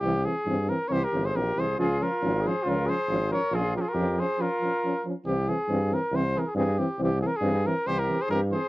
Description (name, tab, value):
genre	balkan folk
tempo	138 BPM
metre	2/4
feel	swing 54% on 16ths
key	unclear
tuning	A4 = 445 Hz
part	warm cornet	melody	0.0-8.7 s	G4 to Db5	-28 LUFS	equal	cassette tape
part	dark euphonium	accompaniment	0.0-8.6 s	E3 to F3	-33 LUFS	right 3 dB	cassette tape
part	mellow French horn	accompaniment	0.0-8.6 s	C4 to Db4	-33 LUFS	left 3 dB	cassette tape
part	clear tuba	bass	0.0-8.5 s	G1 to G2	-28 LUFS	equal	tube saturation
part	warm flugelhorn	second line	0.9-5.1, 7.9-8.7 s	F4 to Bb4	-31 LUFS	equal	cassette tape
room	light reverb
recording	home recording on cassette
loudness	-24 LUFS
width	side -18 dB against mid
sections	0.0-5.3 A section; 5.3-8.7 A section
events	none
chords	0.0 C; 1.8 Db; 3.5 Bbm; 5.3 C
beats	| 0.02 0.46 | 0.90 1.34 | 1.77 2.21 | 2.65 3.08 | 3.52 3.96 | 4.39 4.83 | 5.26 5.70 | 6.13 6.57 | 7.00 7.43 | 7.87 8.30